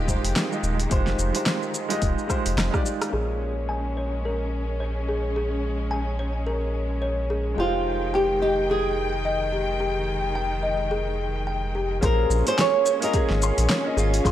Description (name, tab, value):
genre	sunset chillout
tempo	108 BPM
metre	4/4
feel	swing 58% on 16ths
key	Bb dorian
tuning	A4 = 441 Hz
part	warm grand piano	accompaniment	0.0-14.3 s	Ab3 to C6	-30 LUFS	right 1 dB	auto-pan, low-pass filter, tape echo
part	rich studio string section	sustained chords	0.0-14.3 s	Eb3 to G5	-32 LUFS	left 2 dB	none
part	round analog bass	bass	0.0-14.3 s	Eb1 to Bb1	-27 LUFS	equal	tube saturation
part	deep house drum kit	drums	0.1-14.3 s	hi-hat, rim click, shaker, snare drum	-27 LUFS	equal	low-pass filter on hats, studio reverb, low-pass filter on perc, low-pass filter on snare
part	electronic kick drum	drums	0.1-2.8, 12.0-14.3 s	none	-25 LUFS	equal	studio reverb
part	kalimba	arpeggios	3.1-14.3 s	G4 to Ab5	-29 LUFS	left 2 dB	low-pass filter, tape echo
part	flamenco guitar	melody	7.6-14.3 s	F4 to Db5	-24 LUFS	right 1 dB	tape echo
room	light reverb, small room ambience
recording	dry, gritty hardware recording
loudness	-22 LUFS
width	side -12 dB against mid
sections	0.0-3.1 A section; 3.1-12.0 B section; 12.0-14.3 C section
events	drum fill 2.3-3.1; band accent 3.0; filter sweep on grand piano 3.1-12.0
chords	0.0 Fm9; 3.1 Bbm9; 7.6 Fm9; 12.0 Bbm9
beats	0.36 | 0.92 1.47 2.03 2.58 | 3.14 3.69 4.25 4.80 | 5.36 5.92 6.47 7.03 | 7.58 8.14 8.69 9.25 | 9.80 10.36 10.91 11.47 | 12.03 12.58 13.14 13.69 | 14.25